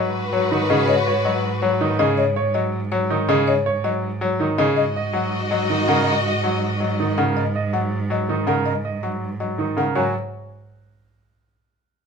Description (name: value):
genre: classical, minimalist pattern music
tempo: 324 BPM (eighths)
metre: 7/8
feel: straight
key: G# minor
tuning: A4 = 440 Hz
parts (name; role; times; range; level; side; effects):
- buzzing marimba with medium hard mallets; melody; 0.0-10.1 s; C#5 to F#5; -25 LUFS; left 9 dB; none
- bright grand piano; accompaniment; 0.0-10.1 s; C#3 to F#3; -24 LUFS; left 2 dB; none
- rich studio violin section; sustained chords; 0.0-2.0, 4.8-7.1 s; F#4 to D#5; -24 LUFS; left 3 dB; none
- clear cello; bass; 0.0-10.1 s; G#2; -26 LUFS; right 3 dB; none
- bright baby grand piano; arpeggios; 0.5-10.1 s; D#4 to D#5; -24 LUFS; right 9 dB; none
- silver concert flute; arpeggios; 0.9-10.1 s; D#5 to G#5; -30 LUFS; left 2 dB; none
room: light reverb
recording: minimal, uncompressed stereo recording, faint mains hum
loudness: -18 LUFS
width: side -6 dB against mid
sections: 0.0-10.0 A section; 10.0-11.3 B section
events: none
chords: 0.0 G#m7; 4.8 D#m/G#; 10.0 G#7(no3)